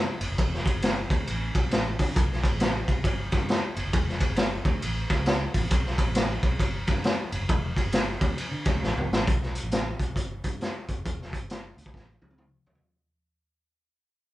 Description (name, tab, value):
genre	uptempo 1960s-style soul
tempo	135 BPM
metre	4/4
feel	swing 62% on 8ths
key	unclear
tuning	A4 = 442 Hz
part	vintage muted fingered electric bass	bass	0.2-12.8 s	E1 to D3	-32 LUFS	equal	none
part	raw garage drum kit	drums	0.2-12.8 s	hi-hat, kick drum, ride cymbal, snare drum, toms	-25 LUFS	equal	vintage 12-bit sampler grit
room	light reverb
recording	band playing live in one room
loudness	-24 LUFS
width	side -16 dB against mid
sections	0.0-9.3 A section; 9.3-12.8 B section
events	drum fill 8.8-9.3, 11.9-12.8; fade-out 9.3-12.8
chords	none